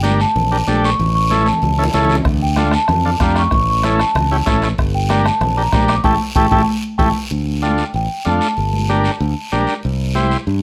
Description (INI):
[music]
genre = latin, cumbia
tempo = 190 BPM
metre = 4/4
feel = straight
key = D minor from 7.3 s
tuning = A4 = 440 Hz
[part]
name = large celesta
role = second line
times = 0.0-9.7 s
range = G5 to D6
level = -21 LUFS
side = equal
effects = none
[part]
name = combo organ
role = accompaniment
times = 0.0-10.4 s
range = C#4 to C5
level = -22 LUFS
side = equal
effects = none
[part]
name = modern bright fingered electric bass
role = bass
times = 0.0-10.6 s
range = G1 to G2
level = -21 LUFS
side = equal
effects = none
[part]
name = congas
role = percussion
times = 0.0-10.3 s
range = none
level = -26 LUFS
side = equal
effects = none
[part]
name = guiro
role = percussion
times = 0.0-10.6 s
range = none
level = -32 LUFS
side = equal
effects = none
[part]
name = bombo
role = percussion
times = 2.3-7.1 s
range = none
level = -23 LUFS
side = equal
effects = none
[sound]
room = moderate studio reverb, RT60 0.6 s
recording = none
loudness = -16 LUFS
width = mono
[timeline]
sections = 0.0-7.3 A section; 7.3-10.6 B section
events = celesta solo 0.0-7.3, 7.3-10.6; drum fill 1.3-2.3, 6.8-7.3; band accent 6.0-7.3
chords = 0.0 Gm; 1.0 A; 2.3 Dm; 3.5 A; 4.8 Gm; 6.0 A7; 7.3 Dm; 8.6 Gm; 9.8 C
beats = 0.05 0.36 0.68 | 0.99 1.31 1.63 1.94 | 2.26 2.57 2.89 3.20 | 3.52 3.84 4.15 4.47 | 4.78 5.10 5.41 5.73 | 6.04 6.36 6.68 6.99 | 7.31 7.62 7.94 8.26 | 8.57 8.89 9.21 9.52 | 9.84 10.16 10.47